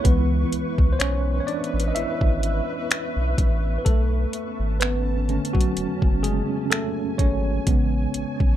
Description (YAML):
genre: contemporary R&B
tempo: 63 BPM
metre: 4/4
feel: swing 54% on 16ths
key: B dorian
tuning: A4 = 442 Hz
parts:
  - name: tine electric piano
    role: accompaniment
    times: 0.0-8.6 s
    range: C#3 to E5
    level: -26 LUFS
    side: right 1 dB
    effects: overdrive, fast stereo tremolo
  - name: granular cloud pad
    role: sustained chords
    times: 0.0-8.6 s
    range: C#4 to C#6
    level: -31 LUFS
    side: equal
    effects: built-in reverb
  - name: smooth R&B drum kit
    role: drums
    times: 0.0-8.6 s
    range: finger snaps, hi-hat, kick drum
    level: -20 LUFS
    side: equal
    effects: none
  - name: round analog bass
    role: bass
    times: 0.1-8.6 s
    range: F#1 to C#2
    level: -24 LUFS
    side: equal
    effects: none
room: little or no reverb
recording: dark, warm production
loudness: -20 LUFS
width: side -12 dB against mid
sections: 0.0-8.6 A section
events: tine electric piano solo 0.0-8.6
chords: 0.1 C#m7; 3.9 Bm9; 7.7 Amaj7